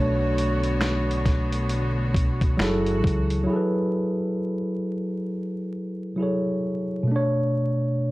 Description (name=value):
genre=lo-fi hip hop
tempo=67 BPM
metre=4/4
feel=swing 59% on 16ths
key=F# minor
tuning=A4 = 440 Hz
part: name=tine electric piano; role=accompaniment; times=0.0-8.1 s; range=B2 to C#5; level=-24 LUFS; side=equal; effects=cassette tape
part: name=rich studio string section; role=sustained chords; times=0.0-3.5 s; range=D3 to C#5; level=-32 LUFS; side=left 2 dB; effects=plate reverb
part: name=deep dub fingered electric bass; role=bass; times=0.0-3.5 s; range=F#1 to C#2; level=-27 LUFS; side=equal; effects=none
part: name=dusty soul sampler-style drum kit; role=drums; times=0.4-3.5 s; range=finger snaps, hi-hat, kick drum, snare drum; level=-24 LUFS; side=equal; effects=vintage 12-bit sampler grit
room=moderate studio reverb, RT60 0.6 s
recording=vinyl crackle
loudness=-22 LUFS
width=side -19 dB against mid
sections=0.0-3.5 A section; 3.5-8.1 B section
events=none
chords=0.0 Bm9; 2.6 F#m9; 3.5 F#m11; 7.1 Bm9